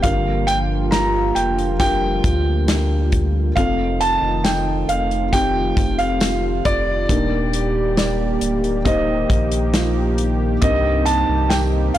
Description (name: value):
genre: pop ballad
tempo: 68 BPM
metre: 4/4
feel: straight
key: unclear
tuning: A4 = 441 Hz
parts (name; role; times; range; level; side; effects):
- warm concert grand piano; melody; 0.0-12.0 s; D5 to Bb5; -22 LUFS; right 2 dB; none
- dark French horn section; second line; 0.0-12.0 s; Eb3 to G4; -27 LUFS; right 4 dB; tape echo
- felt-muted upright piano; accompaniment; 0.0-12.0 s; G2 to C5; -24 LUFS; left 2 dB; none
- warm analog pad; sustained chords; 0.0-12.0 s; D3 to D5; -27 LUFS; right 1 dB; chorus
- warm sub bass; bass; 0.0-12.0 s; D1 to D2; -22 LUFS; equal; none
- natural country drum kit; drums; 0.0-12.0 s; hi-hat, kick drum, snare drum; -21 LUFS; equal; none
- tambourine; percussion; 0.9-11.7 s; none; -38 LUFS; right 9 dB; none
room: light reverb, small room ambience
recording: blown-out, overdriven recording, overdrive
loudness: -16 LUFS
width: side -12 dB against mid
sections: 0.0-12.0 A section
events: none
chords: 0.0 Gm7; 3.6 F7; 7.1 Ebmaj7; 10.6 Cm7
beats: | 0.04 0.92 1.80 2.69 | 3.57 4.45 5.33 6.21 | 7.10 7.98 8.86 9.74 | 10.63 11.51